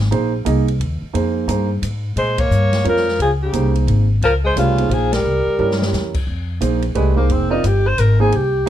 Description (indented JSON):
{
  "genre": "modal jazz",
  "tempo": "176 BPM",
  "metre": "3/4",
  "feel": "swing 63% on 8ths",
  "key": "Bb dorian",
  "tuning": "A4 = 440 Hz",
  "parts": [
    { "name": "upright bass", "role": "bass", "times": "0.0-8.7 s", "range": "F1 to Bb2", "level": "-18 LUFS", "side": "left 1 dB", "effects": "none" },
    { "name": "warm baby grand piano", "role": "accompaniment", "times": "0.1-8.7 s", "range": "A3 to Eb5", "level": "-21 LUFS", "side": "right 6 dB", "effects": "none" },
    { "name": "open jazz drum kit", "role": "drums", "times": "0.1-8.4 s", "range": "crash cymbal, hi-hat, kick drum, ride cymbal, snare drum", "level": "-28 LUFS", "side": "equal", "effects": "none" },
    { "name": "warm alto saxophone", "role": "melody", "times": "2.2-5.9 s", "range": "F4 to Db5", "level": "-19 LUFS", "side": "equal", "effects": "none" },
    { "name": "mellow tenor saxophone", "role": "second line", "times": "2.2-8.7 s", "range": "Db3 to C5", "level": "-22 LUFS", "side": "left 2 dB", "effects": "none" }
  ],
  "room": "light reverb",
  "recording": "dark, warm production",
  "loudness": "-15 LUFS",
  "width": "side -11 dB against mid",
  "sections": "0.0-6.3 A section; 6.3-8.7 B section",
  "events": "band accent 2.3, 5.1; drum fill 5.6-5.9; tenor saxophone solo 6.3-8.7",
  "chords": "0.0 Bbm9; 5.2 C7b9; 6.3 Fm9"
}